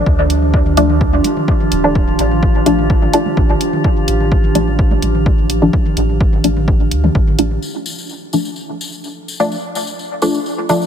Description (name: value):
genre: dub techno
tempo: 127 BPM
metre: 4/4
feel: straight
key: D minor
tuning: A4 = 440 Hz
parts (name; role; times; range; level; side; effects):
- warbly tape-like pad; sustained chords; 0.0-10.9 s; F3 to A4; -21 LUFS; right 2 dB; chorus, built-in reverb, sidechain pumping
- soft dub sub bass; bass; 0.0-7.6 s; D1 to D2; -17 LUFS; equal; tube saturation, sidechain pumping
- electronic kick drum; drums; 0.1-7.2 s; none; -15 LUFS; equal; overdrive
- drifting glass-harmonics texture; texture; 0.7-7.6 s; F3 to F4; -27 LUFS; left 2 dB; chorus, built-in reverb, sidechain pumping
- electronic toms and congas; percussion; 0.2-7.6 s; none; -24 LUFS; equal; sidechain pumping on toms, sidechain pumping on perc
- electronic hi-hat; drums; 0.3-7.5 s; none; -22 LUFS; right 1 dB; overdrive, low-pass filter on cymbals, low-pass filter on hats
- filtered dub chord stab; stabs; 0.8-10.9 s; F3 to D4; -18 LUFS; left 1 dB; chorus, phaser, cassette tape, dub echo
- tambourine; percussion; 7.6-10.9 s; none; -28 LUFS; left 5 dB; none
room: light reverb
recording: none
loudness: -12 LUFS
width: side -8 dB against mid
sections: 0.0-7.6 A section; 7.6-10.9 B section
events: filter sweep on synth stab 0.0-7.6; filter sweep on ambient pad 7.6-10.9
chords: 0.0 Dm